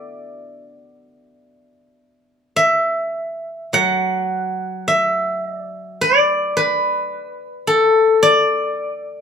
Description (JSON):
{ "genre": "chinese traditional, Chinese solo plucked strings", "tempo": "53 BPM", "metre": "4/4", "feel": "rubato", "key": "D gong mode", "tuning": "A4 = 442 Hz", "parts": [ { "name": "steel-string zither", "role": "solo", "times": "0.0-9.2 s", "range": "F#3 to F#5", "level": "-16 LUFS", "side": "left 1 dB", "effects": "none" } ], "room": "moderate large studio reverb, RT60 0.8 s", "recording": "band playing live in one room", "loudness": "-15 LUFS", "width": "side -7 dB against mid", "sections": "0.0-3.7 A section; 3.7-9.2 B section", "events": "none", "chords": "none", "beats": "0.28 1.41 2.58 | 3.75 4.88 6.00 7.13 | 8.24" }